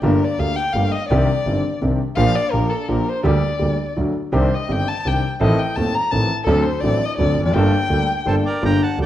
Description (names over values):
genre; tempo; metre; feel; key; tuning
tango; 168 BPM; 3/4; rubato; G minor; A4 = 440 Hz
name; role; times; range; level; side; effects
warm violin; second line; 0.0-8.5 s; A4 to Bb5; -23 LUFS; left 3 dB; none
clear concert grand piano; accompaniment; 0.0-9.1 s; Eb1 to A4; -20 LUFS; equal; none
clear double bass; bass; 0.0-9.1 s; F1 to Eb2; -21 LUFS; right 2 dB; none
bandoneon; melody; 8.3-9.1 s; A4 to Bb5; -25 LUFS; right 2 dB; none
room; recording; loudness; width
moderate large studio reverb, RT60 1.3 s; worn, warbling old tape, cassette tape, warbly pitch drift; -16 LUFS; side -12 dB against mid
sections
0.0-8.6 A section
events
violin solo 0.0-8.6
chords
0.0 Gmadd9; 1.1 Cmadd9; 2.2 Gm7/Bb; 3.2 Gm/D; 4.0 D; 4.3 Cmadd9; 5.4 Adim; 6.5 D7; 7.6 Gmadd9